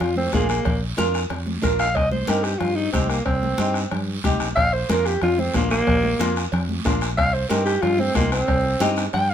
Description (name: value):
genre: latin, cumbia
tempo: 184 BPM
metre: 4/4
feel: straight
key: C minor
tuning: A4 = 441 Hz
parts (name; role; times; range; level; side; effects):
- breathy alto saxophone; melody; 0.0-9.3 s; Bb3 to G5; -22 LUFS; right 1 dB; none
- fingered electric bass; bass; 0.0-9.3 s; Bb1 to G2; -25 LUFS; equal; none
- bombo; percussion; 0.0-9.3 s; none; -27 LUFS; left 3 dB; none
- congas; percussion; 0.0-9.3 s; none; -29 LUFS; equal; none
- cowbell and timbales; percussion; 0.0-9.3 s; none; -34 LUFS; right 4 dB; none
- guiro; percussion; 0.0-9.3 s; none; -34 LUFS; right 6 dB; none
- flamenco guitar; accompaniment; 0.3-9.0 s; Bb3 to Bb4; -25 LUFS; equal; none
room: light reverb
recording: minimal, uncompressed stereo recording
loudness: -19 LUFS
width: side -9 dB against mid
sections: 0.0-9.3 A section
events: alto saxophone solo 0.0-9.3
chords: 0.0 Bb; 2.0 Cm; 4.6 Bb; 7.2 Cm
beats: 0.01 0.33 | 0.66 0.98 1.31 1.64 | 1.96 2.29 2.61 2.94 | 3.26 3.59 3.92 4.24 | 4.57 4.89 5.22 5.55 | 5.87 6.20 6.52 6.85 | 7.18 7.50 7.83 8.15 | 8.48 8.81 9.13